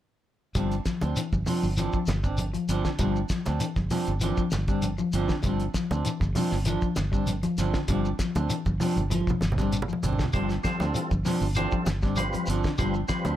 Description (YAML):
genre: afrobeat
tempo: 98 BPM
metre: 4/4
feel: straight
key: unclear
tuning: A4 = 440 Hz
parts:
  - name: electric guitar at the edge of break-up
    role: arpeggios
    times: 0.6-13.3 s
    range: D3 to G3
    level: -31 LUFS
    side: left 6 dB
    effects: none
  - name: electric guitar at the edge of break-up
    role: stabs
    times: 0.6-13.4 s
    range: F3 to D4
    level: -32 LUFS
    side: right 5 dB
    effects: none
  - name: fingered electric bass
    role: bass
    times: 0.6-13.4 s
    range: G1 to D2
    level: -29 LUFS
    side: equal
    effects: none
  - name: cloth-damped thuddy drum kit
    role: drums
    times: 0.6-13.4 s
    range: hi-hat, kick drum, snare drum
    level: -31 LUFS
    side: equal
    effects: none
  - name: congas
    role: percussion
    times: 0.6-13.4 s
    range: none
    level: -32 LUFS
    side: right 2 dB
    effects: none
  - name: shekere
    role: percussion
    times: 0.6-13.4 s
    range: none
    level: -34 LUFS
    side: left 1 dB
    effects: none
  - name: overdriven tonewheel organ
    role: accompaniment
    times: 10.3-13.4 s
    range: G3 to B4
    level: -31 LUFS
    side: right 2 dB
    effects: chorus vibrato, stopped rotary speaker
room: little or no reverb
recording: none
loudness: -24 LUFS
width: side -12 dB against mid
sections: 0.6-13.4 A section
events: drum fill 9.1-10.3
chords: 0.6 G7sus4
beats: | 0.55 1.16 1.77 2.38 | 3.00 3.61 4.22 4.83 | 5.44 6.05 6.67 7.28 | 7.89 8.50 9.12 9.73 | 10.34 10.95 11.56 12.18 | 12.79